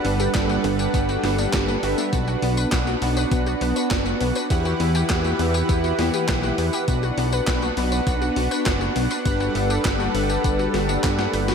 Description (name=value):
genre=synthwave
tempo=101 BPM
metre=4/4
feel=straight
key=B minor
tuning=A4 = 440 Hz
part: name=warm analog pad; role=sustained chords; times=0.0-11.5 s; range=E3 to F#5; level=-25 LUFS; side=equal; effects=chorus
part: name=analog synth brass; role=stabs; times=0.0-11.5 s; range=D4 to F#5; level=-27 LUFS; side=right 3 dB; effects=chorus, digital delay, slapback echo
part: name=fat analog bass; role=bass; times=0.0-11.5 s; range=F#1 to G2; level=-25 LUFS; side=equal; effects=sidechain pumping
part: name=gated 80s digital drum machine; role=drums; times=0.0-11.5 s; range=handclaps, hi-hat, snare drum, tambourine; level=-28 LUFS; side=equal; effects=gated reverb, gated reverb snare
part: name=analog pluck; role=arpeggios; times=0.1-11.5 s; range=B3 to F#5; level=-29 LUFS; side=left 6 dB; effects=chorus, digital delay
part: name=electronic kick drum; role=drums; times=0.3-11.2 s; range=none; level=-25 LUFS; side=equal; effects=overdrive
room=moderate lush hall reverb, RT60 2.8 s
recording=big arena sound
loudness=-19 LUFS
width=side -6 dB against mid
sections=0.0-11.5 A section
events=drum fill 11.0-11.5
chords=0.0 Gmaj7; 2.1 Bm; 4.5 Emadd9; 6.9 Bm; 9.3 Gmaj7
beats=0.35 0.94 1.53 | 2.13 2.72 3.32 3.91 | 4.50 5.10 5.69 6.29 | 6.88 7.47 8.07 8.66 | 9.26 9.85 10.45 11.04